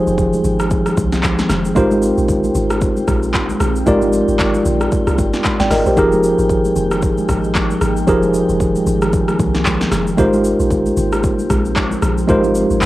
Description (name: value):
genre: amapiano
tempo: 114 BPM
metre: 4/4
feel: swing 58% on 16ths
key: F minor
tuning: A4 = 440 Hz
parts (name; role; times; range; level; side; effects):
- tine electric piano; accompaniment; 0.0-12.9 s; F3 to G5; -16 LUFS; right 1 dB; medium stereo tremolo, cassette tape
- glassy FM pad; sustained chords; 0.0-12.9 s; Eb3 to G5; -26 LUFS; left 1 dB; ensemble chorus, built-in reverb, sidechain pumping, cassette tape
- deep log drum bass; bass; 0.1-12.9 s; F1 to C2; -22 LUFS; equal; none
- deep house drum kit; drums; 0.1-12.9 s; handclaps, hi-hat, kick drum, rim click, shaker, snare drum; -19 LUFS; equal; overdrive
- congas; percussion; 0.2-12.9 s; none; -27 LUFS; left 2 dB; none
room: light reverb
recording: home recording on cassette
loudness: -13 LUFS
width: side -16 dB against mid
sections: 0.0-12.9 A section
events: none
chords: 0.0 Fm11; 1.8 Abmaj13; 6.0 Fm11; 10.2 Abmaj13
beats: 0.18 0.71 1.24 | 1.76 2.29 2.81 3.34 | 3.87 4.39 4.92 5.45 | 5.97 6.50 7.03 7.55 | 8.08 8.60 9.13 9.66 | 10.18 10.71 11.23 11.76 | 12.29 12.81